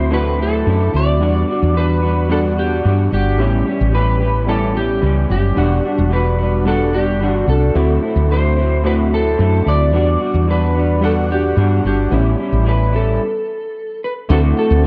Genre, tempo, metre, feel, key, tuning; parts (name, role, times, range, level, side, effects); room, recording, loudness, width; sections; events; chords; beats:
indie pop; 110 BPM; 4/4; straight; E minor; A4 = 440 Hz
electric slide guitar; melody; 0.0-14.8 s; G4 to D5; -23 LUFS; equal; lush chorus, tape echo
electric guitar through a small old amp; accompaniment; 0.0-14.9 s; A2 to G4; -24 LUFS; equal; analog chorus, warbly pitch drift
warm analog keys; accompaniment; 0.0-14.9 s; G3 to F#5; -24 LUFS; equal; chorus, cassette tape
woody fretless electric bass; bass; 0.0-14.9 s; E1 to G2; -18 LUFS; equal; ensemble chorus
light reverb; dark, warm production; -16 LUFS; mono
0.0-14.3 A section
stop 13.2-14.3
0.0 D9; 1.2 Em9; 3.4 A7; 5.6 Em9; 7.8 D9; 9.9 Em9; 12.1 A7; 14.3 D7
0.12 0.67 | 1.21 1.76 2.30 2.85 | 3.39 3.94 4.48 5.03 | 5.57 6.12 6.67 7.21 | 7.76 8.30 8.85 9.39 | 9.94 10.48 11.03 11.57 | 12.12 12.66 13.21 13.76 | 14.30 14.85